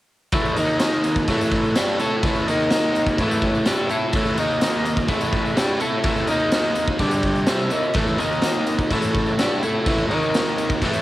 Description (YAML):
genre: garage rock duo or trio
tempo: 126 BPM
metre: 4/4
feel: straight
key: unclear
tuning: A4 = 440 Hz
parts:
  - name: combo organ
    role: sustained chords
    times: 0.3-11.0 s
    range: D4 to G5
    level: -28 LUFS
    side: equal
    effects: cassette tape, plate reverb
  - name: overdriven electric guitar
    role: riff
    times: 0.3-11.0 s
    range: G2 to A4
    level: -20 LUFS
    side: equal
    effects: cassette tape
  - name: raw garage drum kit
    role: drums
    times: 0.3-10.9 s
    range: crash cymbal, kick drum, snare drum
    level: -23 LUFS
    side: equal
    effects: cassette tape
  - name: tambourine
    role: percussion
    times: 0.3-11.0 s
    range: none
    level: -40 LUFS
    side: left 4 dB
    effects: none
room: moderate studio reverb, RT60 0.6 s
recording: home recording on cassette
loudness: -18 LUFS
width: side -16 dB against mid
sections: 0.3-11.0 A section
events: transistor combo organ fill 7.0-8.0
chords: 0.3 A; 0.6 D#5; 1.3 A; 2.5 D#5; 3.2 A; 4.4 D#5; 5.1 A; 6.3 D#5; 7.0 G5; 7.5 A; 8.2 D#5; 8.9 A; 10.1 D#5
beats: | 0.33 0.81 1.28 1.76 | 2.23 2.71 3.19 3.66 | 4.14 4.62 5.09 5.57 | 6.04 6.52 7.00 7.48 | 7.95 8.43 8.91 9.38 | 9.86 10.34 10.82